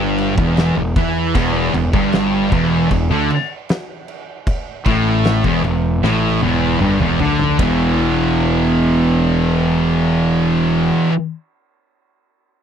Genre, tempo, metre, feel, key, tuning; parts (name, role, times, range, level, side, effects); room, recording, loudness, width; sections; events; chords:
stoner and doom metal; 77 BPM; 4/4; straight; E minor; A4 = 440 Hz
thick fuzz guitar; riff; 0.0-11.1 s; E2 to E3; -19 LUFS; left 8 dB; distortion
thick fuzz guitar; riff; 0.0-11.1 s; E2 to E3; -18 LUFS; right 9 dB; distortion
fuzz fingered electric bass; bass; 0.0-10.9 s; E1 to E2; -21 LUFS; equal; overdrive, tube saturation
oversized low-tuned drum kit; drums; 0.2-7.8 s; crash cymbal, kick drum, ride cymbal, snare drum, toms; -22 LUFS; equal
heavy high-gain guitar; riff; 1.4-11.1 s; E2 to E3; -22 LUFS; left 1 dB; distortion
little or no reverb; dry, close 1970s-style studio recording; -14 LUFS; side -8 dB against mid
0.0-7.6 A section; 7.6-10.7 B section
drum fill 6.0-7.6
0.0 Em; 7.6 E5